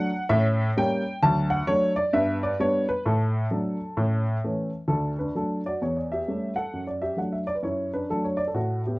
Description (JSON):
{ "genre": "jazz, stride piano", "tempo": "131 BPM", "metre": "4/4", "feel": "swing 62% on 8ths", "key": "D major", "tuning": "A4 = 439 Hz", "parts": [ { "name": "dark upright piano", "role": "solo", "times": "0.0-9.0 s", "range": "D2 to A5", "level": "-23 LUFS", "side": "equal", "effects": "none" } ], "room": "wet studio ambience, RT60 0.5 s", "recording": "worn, warbling old tape, cassette tape, warbly pitch drift", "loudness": "-23 LUFS", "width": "side -23 dB against mid", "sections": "0.0-4.9 A section; 4.9-9.0 B section", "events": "none", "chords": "0.3 A7b9; 1.2 D; 2.1 G; 3.0 D/A; 4.0 A; 4.9 D; 5.8 A7/E; 6.7 D/F#" }